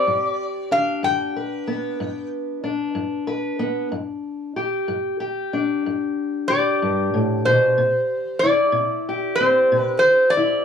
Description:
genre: acoustic country blues, solo or duo.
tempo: 62 BPM (dotted quarters).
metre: 12/8.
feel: straight.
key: G major.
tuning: A4 = 436 Hz.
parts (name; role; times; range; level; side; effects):
metal-body resonator slide guitar; melody; 0.0-10.6 s; C5 to G5; -18 LUFS; equal; plate reverb.
fingerpicked steel-string acoustic guitar; accompaniment; 0.0-10.6 s; G2 to B4; -23 LUFS; left 2 dB; none.
room: wet booth ambience, RT60 0.2 s.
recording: small room ambience.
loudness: -19 LUFS.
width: side -7 dB against mid.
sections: 0.0-10.6 A section.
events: none.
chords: 0.1 G; 7.8 C.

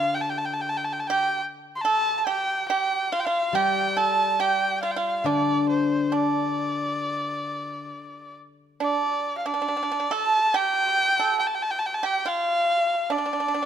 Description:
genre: chinese traditional, Chinese chamber ensemble.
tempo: 70 BPM.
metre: 4/4.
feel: rubato.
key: D yu mode.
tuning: A4 = 436 Hz.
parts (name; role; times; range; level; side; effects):
rich erhu; melody; 0.0-13.7 s; C5 to C6; -24 LUFS; left 1 dB; none.
pipa; second line; 0.0-13.7 s; D4 to A4; -26 LUFS; right 8 dB; none.
steel-string zither; accompaniment; 0.0-7.9 s; D3 to G3; -28 LUFS; left 5 dB; none.
room: light reverb.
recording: close, detailed microphones.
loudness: -22 LUFS.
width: side -9 dB against mid.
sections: 0.0-8.8 A section; 8.8-13.7 B section.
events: none.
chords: none.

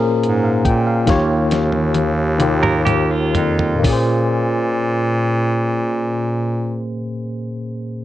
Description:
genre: slow six-eight R&B.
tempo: 40-49 BPM (dotted quarters).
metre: 6/8.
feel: straight.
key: Bb dorian.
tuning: A4 = 436 Hz.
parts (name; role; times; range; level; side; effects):
tine electric piano; accompaniment; 0.0-8.0 s; Bb2 to G5; -18 LUFS; left 1 dB; slow stereo tremolo.
bright bass clarinet; bass; 0.2-6.9 s; Eb2 to Bb2; -20 LUFS; equal; none.
dusty soul sampler-style drum kit; drums; 0.2-4.1 s; hi-hat, kick drum, snare drum, toms; -21 LUFS; right 1 dB; overdrive.
semi-hollow electric guitar; second line; 2.6-3.8 s; F4 to Bb4; -21 LUFS; right 6 dB; slapback echo.
room: little or no reverb.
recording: worn, warbling old tape, cassette tape, warbly pitch drift.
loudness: -15 LUFS.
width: side -14 dB against mid.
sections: 0.0-3.8 A section; 3.8-6.8 B section.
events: slowing down 0.0-3.8; drum fill 1.1-3.8.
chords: 0.0 Bbm9; 1.1 Eb9; 3.8 Bbm9.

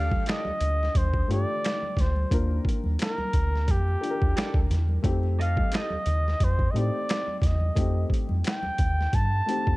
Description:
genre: R&B, neo-soul.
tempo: 88 BPM.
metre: 4/4.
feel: swing 57% on 16ths.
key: unclear.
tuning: A4 = 439 Hz.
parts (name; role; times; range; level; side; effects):
breathy flugelhorn; melody; 0.0-9.8 s; G4 to A5; -30 LUFS; equal; none.
semi-hollow electric guitar; second line; 0.0-6.0 s; G4 to Eb5; -38 LUFS; right 6 dB; ensemble chorus.
dark upright piano; accompaniment; 0.0-9.8 s; D3 to Bb4; -34 LUFS; left 4 dB; none.
round analog bass; bass; 0.0-9.8 s; D2 to A2; -25 LUFS; equal; none.
boom bap sampler-style drum kit; drums; 0.1-9.8 s; finger snaps, hi-hat, kick drum, snare drum; -27 LUFS; equal; none.
congas; percussion; 0.1-9.5 s; none; -39 LUFS; right 2 dB; none.
room: small room reverb.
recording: dark, warm production.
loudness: -23 LUFS.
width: side -20 dB against mid.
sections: 0.0-9.8 A section.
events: none.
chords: 0.0 Ebmaj9#11; 5.0 F9.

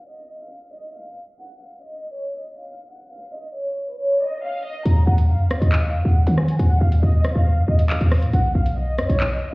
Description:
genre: hip hop, drill.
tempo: 138 BPM.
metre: 4/4.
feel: half-time.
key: unclear.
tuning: A4 = 440 Hz.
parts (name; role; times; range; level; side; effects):
dark studio violin section; melody; 0.0-9.5 s; Cb5 to Bb5; -27 LUFS; equal; low-pass filter, digital delay.
short 808-style bass; bass; 4.9-9.3 s; B1 to Eb3; -16 LUFS; equal; none.
drill drum kit; drums; 4.9-9.3 s; handclaps, hi-hat, rim click; -27 LUFS; equal; none.
room: little or no reverb.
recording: heard muffled through a wall, stone room reverb, EQ, low-pass filter.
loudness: -17 LUFS.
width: side -24 dB against mid.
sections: 0.0-4.9 A section; 4.9-9.5 B section.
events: filter sweep 0.0-4.9.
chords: 0.0 N.C.; 8.3 B.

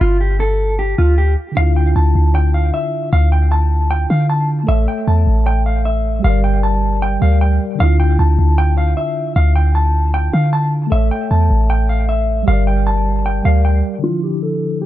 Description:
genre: hip hop, trap.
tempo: 154 BPM.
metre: 4/4.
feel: half-time.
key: D harmonic minor.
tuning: A4 = 440 Hz.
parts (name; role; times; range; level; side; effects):
mellow electric guitar; melody; 0.0-14.9 s; F4 to A5; -21 LUFS; left 1 dB; low-pass filter, analog delay.
clean 808-style bass; bass; 0.0-13.8 s; G1 to D3; -14 LUFS; equal; none.
mellow tine electric piano; accompaniment; 1.5-14.9 s; D3 to E5; -21 LUFS; equal; medium stereo tremolo, low-pass filter.
room: little or no reverb.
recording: echo-heavy mix, low-pass filter.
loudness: -13 LUFS.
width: side -14 dB against mid.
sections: 0.0-1.6 A section; 1.6-14.0 B section.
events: break 0.0-1.6.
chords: 0.0 G5; 1.6 Dmadd9; 4.7 A; 6.2 Gm; 7.8 Dmadd9; 10.9 A; 12.5 Gm; 14.0 Dmadd9.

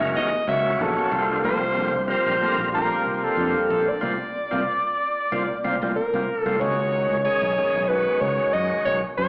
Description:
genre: jazz.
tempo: 93 BPM.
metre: 4/4.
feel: swing 54% on 16ths.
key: unclear.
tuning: A4 = 440 Hz.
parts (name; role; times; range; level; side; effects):
overdriven synth lead; melody; 0.0-9.3 s; A4 to E5; -22 LUFS; equal; slapback echo.
tonewheel organ; accompaniment; 0.0-9.0 s; D#3 to A#4; -25 LUFS; equal; slow rotary speaker, overdrive, slapback echo.
mellow electric guitar; stabs; 0.0-6.6 s; E3 to A4; -30 LUFS; equal; analog chorus, slapback echo.
fretless electric bass; bass; 0.0-9.3 s; F#1 to F#2; -30 LUFS; equal; none.
room: light reverb, digital ambience.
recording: live gig heard through the venue's PA, club reverb, AM radio sound.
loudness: -20 LUFS.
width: side -32 dB against mid.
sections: 0.0-6.6 A section; 6.6-9.3 A section.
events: band accent 4.0-6.6.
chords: 0.0 F#13sus4; 1.1 C13sus4; 6.6 C#9sus4.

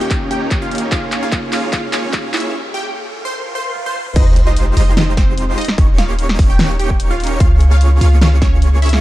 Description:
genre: future bass.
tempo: 148 BPM.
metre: 4/4.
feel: half-time.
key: unclear.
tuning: A4 = 439 Hz.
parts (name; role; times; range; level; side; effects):
wide unison pluck; melody; 0.0-9.0 s; C4 to C6; -23 LUFS; right 2 dB; phaser, sidechain pumping, tape echo.
mellow tine electric piano; accompaniment; 0.0-2.6 s; Bb3 to Ab4; -27 LUFS; left 2 dB; sidechain pumping, tape echo.
shimmering ambient pad; sustained chords; 0.0-2.5 s; Eb2 to G4; -36 LUFS; right 2 dB; none.
supersaw chords; riff; 0.0-9.0 s; Ab3 to Db5; -24 LUFS; right 1 dB; sidechain pumping, low-pass filter.
riser, swell and sub drop; sound effects; 1.5-5.8 s; none; -25 LUFS; equal; none.
big-room dance drum kit; drums; 0.1-9.0 s; crash cymbal, handclaps, hi-hat, snare drum, toms; -21 LUFS; equal; none.
electronic kick drum; drums; 0.1-8.5 s; none; -14 LUFS; equal; overdrive.
airy dreamy lead; arpeggios; 4.2-9.0 s; C6 to Db6; -29 LUFS; equal; chorus, sidechain pumping.
warm 808-style bass; bass; 4.2-9.0 s; Eb1 to Db2; -13 LUFS; equal; sidechain pumping.
room: little or no reverb.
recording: dark, warm production, high-pass filter.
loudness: -12 LUFS.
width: side -16 dB against mid.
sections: 0.0-4.2 A section; 4.2-9.0 B section.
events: build-up 0.0-4.2; drum fill 0.0-2.5, 3.8-4.2; riser 1.5-4.2; break 2.5-4.2; swell 3.4-4.2; drop 4.2-9.0; impact 4.2-5.8.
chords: 0.0 Eb7; 0.9 Db6; 2.5 C5; 4.2 Fm9; 5.6 Eb7; 7.4 Db6.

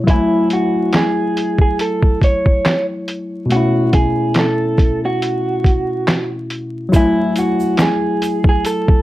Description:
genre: lo-fi hip hop.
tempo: 70 BPM.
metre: 4/4.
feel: swing 55% on 16ths.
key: F# minor.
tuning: A4 = 440 Hz.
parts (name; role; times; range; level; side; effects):
tine electric piano; accompaniment; 0.0-9.0 s; B2 to G#5; -18 LUFS; left 2 dB; low-pass filter.
electric guitar through a small old amp; melody; 0.1-9.0 s; E4 to C#5; -19 LUFS; right 2 dB; low-pass filter.
lo-fi sampler-style drum kit; drums; 0.1-9.0 s; handclaps, hi-hat, kick drum, snare drum; -14 LUFS; equal; overdrive.
tube shaker; percussion; 6.9-8.9 s; none; -40 LUFS; right 4 dB; none.
room: light reverb.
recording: vinyl crackle.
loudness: -13 LUFS.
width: side -16 dB against mid.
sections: 0.0-6.9 A section; 6.9-9.0 B section.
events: filter sweep 0.0-6.9.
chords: 0.1 F#m9; 3.5 B9sus4; 6.9 F#m9.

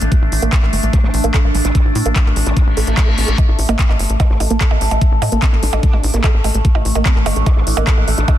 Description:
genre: psychedelic trance.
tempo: 147 BPM.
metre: 4/4.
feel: straight.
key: A phrygian.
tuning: A4 = 440 Hz.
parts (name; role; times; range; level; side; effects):
overtone-sweeping drone; sustained chords; 0.0-8.4 s; A3 to A4; -22 LUFS; equal; chorus, built-in reverb, phaser, sidechain pumping.
woody wave-folded pluck; riff; 0.0-8.3 s; A3 to A4; -24 LUFS; moving between left 1 dB and right 6 dB; chorus, auto-pan, sidechain pumping, ping-pong delay.
tight sequencer bass; bass; 0.0-8.2 s; G1 to A2; -17 LUFS; equal; none.
techno drum kit; drums; 0.0-8.4 s; handclaps, hi-hat, percussion blips; -22 LUFS; right 2 dB; overdrive.
electronic kick drum; drums; 0.1-8.4 s; none; -14 LUFS; equal; overdrive.
vowel-sweep wobble bass; second line; 0.9-8.3 s; A3 to D4; -30 LUFS; right 2 dB; chorus, sidechain pumping, high-pass filter, digital delay.
reverse cymbal; sound effects; 2.7-3.4 s; none; -26 LUFS; left 5 dB; none.
room: digital ambience.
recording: dense, heavily limited modern master.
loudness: -12 LUFS.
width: side -12 dB against mid.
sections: 0.0-8.4 A section.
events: filter sweep on synth arpeggio sound 0.0-8.4; reverse cymbal 2.7-3.4.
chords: 0.0 A5.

